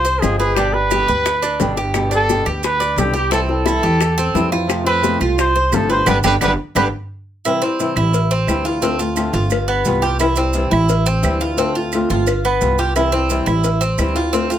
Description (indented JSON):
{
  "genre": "latin, Cuban son and guajira",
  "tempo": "174 BPM",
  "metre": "4/4",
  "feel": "straight",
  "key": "C major",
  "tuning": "A4 = 440 Hz",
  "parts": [
    { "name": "warm trumpet", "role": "melody", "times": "0.0-6.9 s", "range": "G4 to C5", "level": "-18 LUFS", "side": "right 1 dB", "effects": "none" },
    { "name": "Cuban tres", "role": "arpeggios", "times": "0.0-14.6 s", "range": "B3 to D5", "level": "-20 LUFS", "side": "right 3 dB", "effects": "none" },
    { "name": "upright bass", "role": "bass", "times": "0.0-14.6 s", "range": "G1 to F2", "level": "-20 LUFS", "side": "equal", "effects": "none" },
    { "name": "bongos and cowbell", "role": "percussion", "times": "0.0-14.5 s", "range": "none", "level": "-25 LUFS", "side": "left 8 dB", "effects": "none" },
    { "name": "maracas", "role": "percussion", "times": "0.1-14.6 s", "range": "none", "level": "-30 LUFS", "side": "right 9 dB", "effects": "none" },
    { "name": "flamenco guitar", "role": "accompaniment", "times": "0.2-14.6 s", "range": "B2 to G4", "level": "-21 LUFS", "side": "left 2 dB", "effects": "none" },
    { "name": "claves", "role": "percussion", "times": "0.2-14.2 s", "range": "none", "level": "-27 LUFS", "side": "right 7 dB", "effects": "none" }
  ],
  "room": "light reverb",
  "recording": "close, detailed microphones",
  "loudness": "-15 LUFS",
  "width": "side -10 dB against mid",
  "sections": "0.0-7.4 A section; 7.4-14.6 B section",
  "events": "band accent 6.1-7.4",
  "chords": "0.0 Fm; 0.6 G; 3.3 C; 4.7 F; 6.1 G; 7.4 C; 8.1 Am7; 8.8 Dm7; 9.5 G7; 10.2 C; 10.9 Am7; 11.6 Dm7; 12.3 G7; 13.0 C; 13.6 Am7",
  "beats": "0.22 | 0.57 0.91 1.25 1.60 | 1.94 2.29 2.63 2.97 | 3.32 3.66 4.01 4.35 | 4.69 5.04 5.38 5.73 | 6.07 6.42 6.76 7.10 | 7.45 7.79 8.14 8.48 | 8.82 9.17 9.51 9.86 | 10.20 10.54 10.89 11.23 | 11.58 11.92 12.27 12.61 | 12.95 13.30 13.64 13.98 | 14.33"
}